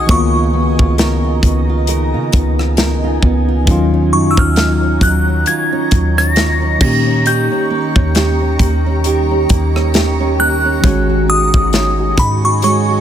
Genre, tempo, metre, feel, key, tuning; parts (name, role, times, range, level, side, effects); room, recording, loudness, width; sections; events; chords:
contemporary R&B; 67 BPM; 4/4; swing 58% on 16ths; Eb minor; A4 = 440 Hz
glassy synth bell; melody; 0.0-13.0 s; Cb6 to Bb6; -17 LUFS; left 1 dB; chorus, ping-pong delay
tine electric piano; accompaniment; 0.0-13.0 s; Eb3 to G4; -20 LUFS; left 3 dB; slow stereo tremolo
granular cloud pad; sustained chords; 0.0-13.0 s; Eb4 to Db6; -22 LUFS; right 1 dB; built-in reverb, sidechain pumping
nylon-string guitar; arpeggios; 0.0-13.0 s; Db3 to Db5; -20 LUFS; right 8 dB
clean 808-style bass; bass; 0.0-13.0 s; Ab1 to Db3; -16 LUFS; equal
modern studio drum kit; drums; 0.1-12.9 s; crash cymbal, hi-hat, kick drum, rim click, snare drum; -16 LUFS; equal
small room ambience; -11 LUFS; side -10 dB against mid
0.0-13.0 A section
0.1 Db13; 3.7 Ebm9; 6.8 Eb7; 10.8 Ab7sus4